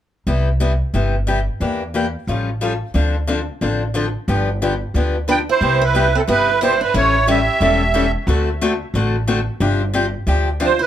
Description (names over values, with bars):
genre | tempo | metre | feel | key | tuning
acoustic string swing (jazz manouche) | 180 BPM | 4/4 | swing 60% on 8ths | C major | A4 = 440 Hz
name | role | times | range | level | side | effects
picked steel-string acoustic guitar | accompaniment | 0.3-10.7 s | C3 to A4 | -20 LUFS | left 3 dB | none
upright bass | bass | 0.3-10.8 s | E1 to E2 | -20 LUFS | equal | none
musette accordion | melody | 5.3-8.1, 10.6-10.9 s | A4 to G5 | -17 LUFS | right 4 dB | plate reverb, tape echo
picked steel-string acoustic guitar | second line | 5.3-8.1, 10.6-10.9 s | C4 to B4 | -23 LUFS | right 7 dB | none
room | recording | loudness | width
light reverb | none | -16 LUFS | side -11 dB against mid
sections
0.3-5.6 A section; 5.6-10.9 B section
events
none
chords
0.3 Cmaj7; 1.6 Em7b5; 2.3 Aaug7; 2.9 Dm7; 4.3 G7; 5.6 Cmaj7; 6.9 A7; 8.3 D7; 9.6 G7sus4